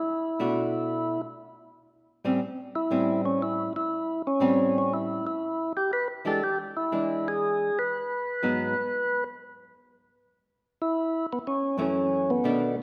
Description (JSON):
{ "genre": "jazz", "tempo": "120 BPM", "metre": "4/4", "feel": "swing 67% on 8ths", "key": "unclear", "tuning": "A4 = 436 Hz", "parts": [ { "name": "percussive tonewheel organ", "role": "melody", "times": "0.0-12.8 s", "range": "B3 to B4", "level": "-29 LUFS", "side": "equal", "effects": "slow rotary speaker" }, { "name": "archtop guitar, miked and amplified", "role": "accompaniment", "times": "0.4-8.7, 11.8-12.8 s", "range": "F#2 to G4", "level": "-31 LUFS", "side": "equal", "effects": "none" } ], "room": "moderate recital hall reverb, RT60 1.9 s", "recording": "none", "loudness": "-27 LUFS", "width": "mono", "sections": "0.0-12.8 A section", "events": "none", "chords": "0.4 Bm7; 1.4 A7#9; 6.4 E7; 8.4 G#m7; 9.4 N.C.; 10.4 F#m7" }